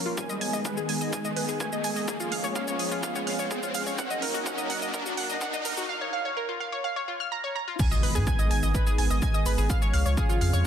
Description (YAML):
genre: melodic techno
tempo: 126 BPM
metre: 4/4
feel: straight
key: G# dorian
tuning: A4 = 441 Hz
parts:
  - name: lush unison pad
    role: sustained chords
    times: 0.0-10.7 s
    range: C#3 to A#4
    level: -33 LUFS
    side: equal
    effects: chorus, sidechain pumping
  - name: analog pluck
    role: arpeggios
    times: 0.0-10.6 s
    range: E#4 to G#6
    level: -30 LUFS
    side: equal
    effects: chorus, cassette tape, sidechain pumping, tape echo
  - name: riser and impact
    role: sound effects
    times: 0.0-9.7 s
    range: none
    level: -34 LUFS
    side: equal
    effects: none
  - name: electronic kick drum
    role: drums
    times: 0.2-10.3 s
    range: none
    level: -28 LUFS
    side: equal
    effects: high-pass filter on kick, high-pass filter on room
  - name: techno drum kit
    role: drums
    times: 0.2-10.6 s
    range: crash cymbal, hi-hat, shaker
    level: -35 LUFS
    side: right 2 dB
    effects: high-pass filter on hats, high-pass filter on perc, high-pass filter on cymbals, high-pass filter on room
  - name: round analog bass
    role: bass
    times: 8.0-10.6 s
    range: G#1 to G#2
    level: -24 LUFS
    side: equal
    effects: sidechain pumping
room: light reverb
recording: dense, heavily limited modern master, high-pass filter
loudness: -25 LUFS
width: side -9 dB against mid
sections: 0.0-7.8 A section; 7.8-10.7 B section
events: build-up 0.0-7.8; riser 0.0-5.9; filter sweep on synth pluck 0.0-7.8; drop 7.8-10.7; impact 7.8-9.7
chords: 0.2 G#m; 2.1 C#; 4.0 D#m; 5.9 A#m; 7.8 G#m; 9.7 C#